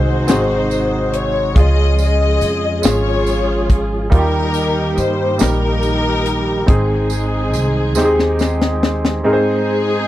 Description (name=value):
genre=slow gospel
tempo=47 BPM (dotted quarters)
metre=6/8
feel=straight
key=Ab major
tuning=A4 = 440 Hz
part: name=warm studio string section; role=melody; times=0.0-10.1 s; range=C4 to Eb5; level=-20 LUFS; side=left 2 dB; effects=none
part: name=warm concert grand piano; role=accompaniment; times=0.0-10.1 s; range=Ab2 to C5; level=-20 LUFS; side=equal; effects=none
part: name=mellow tonewheel organ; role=sustained chords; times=0.0-10.1 s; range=C3 to Ab4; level=-24 LUFS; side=right 2 dB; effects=fast rotary speaker, overdrive
part: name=upright bass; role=bass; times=0.0-9.2 s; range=Ab1 to G2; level=-18 LUFS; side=equal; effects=none
part: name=tight funk drum kit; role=drums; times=0.3-9.2 s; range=hi-hat, kick drum, snare drum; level=-15 LUFS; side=left 1 dB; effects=none
part: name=tambourine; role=percussion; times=0.3-8.8 s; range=none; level=-29 LUFS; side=right 24 dB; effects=none
room=little or no reverb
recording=dry, close 1970s-style studio recording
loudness=-13 LUFS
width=side -14 dB against mid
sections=0.0-9.3 A section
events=drum fill 8.0-9.3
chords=0.0 Ab7; 1.6 Db; 4.1 Eb; 6.7 Ab